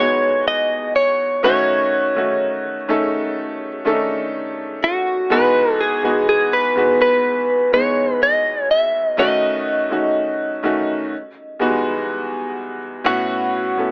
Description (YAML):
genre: R&B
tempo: 62 BPM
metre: 4/4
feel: straight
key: E major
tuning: A4 = 440 Hz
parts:
  - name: direct-recorded clean electric guitar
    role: melody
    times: 0.0-13.9 s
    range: F#4 to E5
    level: -16 LUFS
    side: equal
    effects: analog chorus
  - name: clear baby grand piano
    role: accompaniment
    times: 0.0-13.9 s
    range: E2 to A4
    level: -20 LUFS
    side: equal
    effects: none
room: small room ambience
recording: dry, gritty hardware recording, AM radio sound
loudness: -16 LUFS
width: side -35 dB against mid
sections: 0.0-13.0 A section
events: none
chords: 0.0 Emaj9; 1.4 D#m7b5; 5.3 Emaj9; 9.2 D#m7b5; 11.1 Emaj9; 13.0 A6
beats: 0.47 | 1.44 2.40 3.37 4.34 | 5.31 6.28 7.24 8.21 | 9.18 10.15 11.11 12.08 | 13.05